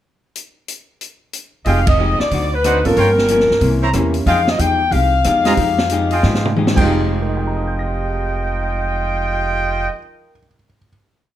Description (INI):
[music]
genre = jazz, big band swing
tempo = 184 BPM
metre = 4/4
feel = swing 64% on 8ths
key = F minor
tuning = A4 = 440 Hz
[part]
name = swinging big-band drum kit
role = drums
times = 0.4-6.8 s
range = crash cymbal, hi-hat, kick drum, ride cymbal, rim click, snare drum, toms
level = -21 LUFS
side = equal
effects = none
[part]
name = mellow saxophone section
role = melody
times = 1.7-6.6 s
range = Bb4 to G5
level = -17 LUFS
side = left 2 dB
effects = plate reverb
[part]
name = archtop guitar, miked and amplified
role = accompaniment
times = 1.7-10.3 s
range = G2 to G4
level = -24 LUFS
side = left 5 dB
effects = none
[part]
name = clear trumpet section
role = stabs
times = 1.7-9.9 s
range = Eb4 to Bb5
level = -21 LUFS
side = right 2 dB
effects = none
[part]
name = upright bass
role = bass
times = 1.7-9.9 s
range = F1 to Ab2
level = -19 LUFS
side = equal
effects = none
[part]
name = warm concert grand piano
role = accompaniment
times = 2.9-10.9 s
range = F2 to Bb6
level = -24 LUFS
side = right 4 dB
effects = none
[sound]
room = moderate large studio reverb, RT60 0.9 s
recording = none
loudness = -14 LUFS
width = side -12 dB against mid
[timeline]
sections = 0.4-1.7 pickup bar; 1.7-6.9 A section; 6.9-9.5 final chord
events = band accent 1.8; drum fill 6.2-6.9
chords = 0.4 N.C.; 1.7 Fm9; 2.3 D7b9; 3.0 Gm7b5; 3.6 C7b9; 4.3 Fm9